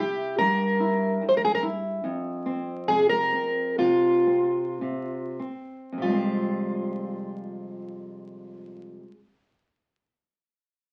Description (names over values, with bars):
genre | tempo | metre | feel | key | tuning
fado | 45-73 BPM | 2/4 | rubato | F harmonic minor | A4 = 443 Hz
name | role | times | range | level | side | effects
fingerpicked plugged-in twelve-string acoustic guitar | melody | 0.0-9.1 s | F4 to C5 | -26 LUFS | equal | none
flamenco guitar | accompaniment | 0.0-9.2 s | F2 to E4 | -32 LUFS | equal | none
room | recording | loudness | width
wet small room reverb, RT60 0.6 s | very old 78 rpm record, vinyl crackle, nothing above 10.5 kHz | -25 LUFS | mono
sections
0.0-6.0 A section; 6.0-10.9 B section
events
slowing down 2.0-6.0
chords
0.0 C7; 2.0 F5; 6.0 Fmadd9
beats
| 0.38 1.21 | 2.04 2.89 | 3.79 4.82 | 6.03 7.33 | 8.60